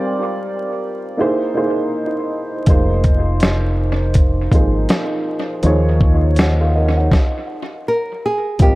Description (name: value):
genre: lo-fi hip hop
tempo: 81 BPM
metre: 4/4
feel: swing 59% on 16ths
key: unclear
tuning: A4 = 440 Hz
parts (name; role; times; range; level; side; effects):
- dark upright piano; accompaniment; 0.0-8.8 s; F3 to G5; -19 LUFS; right 1 dB; cassette tape, tape echo
- deep dub fingered electric bass; bass; 2.7-8.8 s; F1 to Eb2; -16 LUFS; equal; none
- dusty soul sampler-style drum kit; drums; 2.7-8.8 s; hi-hat, kick drum, snare drum; -16 LUFS; equal; tape echo
- nylon-string guitar; melody; 7.9-8.8 s; G4 to Bb4; -17 LUFS; equal; tape echo
room: light reverb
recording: echo-heavy mix, vinyl crackle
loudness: -14 LUFS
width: side -19 dB against mid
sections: 0.0-8.6 A section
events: stop 7.1-8.6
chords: 0.0 Gm7; 1.2 C7alt; 2.7 Fm7; 5.6 Eb5; 7.1 N.C.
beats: 0.45 1.19 1.93 | 2.67 3.41 4.15 4.89 | 5.63 6.38 7.12 7.86 | 8.60